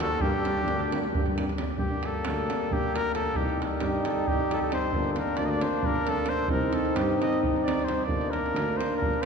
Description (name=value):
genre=balkan folk, Balkan brass band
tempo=267 BPM (eighths)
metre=7/8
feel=straight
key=G minor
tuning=A4 = 439 Hz
part: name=warm trumpet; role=melody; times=0.0-9.3 s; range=G4 to Eb5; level=-31 LUFS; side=left 1 dB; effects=none
part: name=mellow flugelhorn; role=second line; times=0.0-1.4 s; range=D4 to F#4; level=-37 LUFS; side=left 3 dB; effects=none
part: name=clear euphonium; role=accompaniment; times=0.0-9.3 s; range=G3 to C4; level=-32 LUFS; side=right 6 dB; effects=none
part: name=clear trombone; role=accompaniment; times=0.0-9.3 s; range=Bb3 to Eb4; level=-32 LUFS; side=left 5 dB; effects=none
part: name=davul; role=percussion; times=0.0-9.3 s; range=none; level=-31 LUFS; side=right 1 dB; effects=none
part: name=dark tuba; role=bass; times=0.2-9.1 s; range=G1 to G2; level=-33 LUFS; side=equal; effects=none
room=wet cathedral reverb, RT60 4.6 s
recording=recorded in a church or concert hall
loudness=-24 LUFS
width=side -6 dB against mid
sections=0.0-1.8 A section; 1.8-9.3 B section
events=trumpet solo 1.8-9.3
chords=0.2 Gm; 3.4 Cm; 4.9 Gm; 6.5 Cm; 8.1 Gm